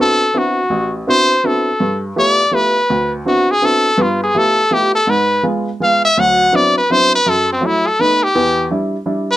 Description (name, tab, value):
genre	jazz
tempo	165 BPM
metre	3/4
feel	swing 65% on 8ths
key	D mixolydian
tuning	A4 = 438 Hz
part	brilliant trumpet	melody	0.0-9.4 s	C4 to F#5	-13 LUFS	left 1 dB	none
part	warm upright piano	accompaniment	0.0-9.3 s	A1 to G4	-18 LUFS	right 1 dB	none
room	light reverb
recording	close, detailed microphones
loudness	-12 LUFS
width	side -14 dB against mid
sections	0.0-9.4 A section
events	trumpet solo 0.0-9.4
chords	0.0 D13; 1.8 G13; 2.9 D13; 4.0 G13; 5.1 G#m6; 6.2 D13; 7.2 F#m7b5; 8.0 B7; 8.3 Em7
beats	0.34 | 0.71 1.07 1.43 | 1.80 2.16 2.52 | 2.88 3.25 3.61 | 3.98 4.34 4.70 | 5.06 5.43 5.79 | 6.15 6.51 6.88 | 7.24 7.60 7.97 | 8.33 8.69 9.06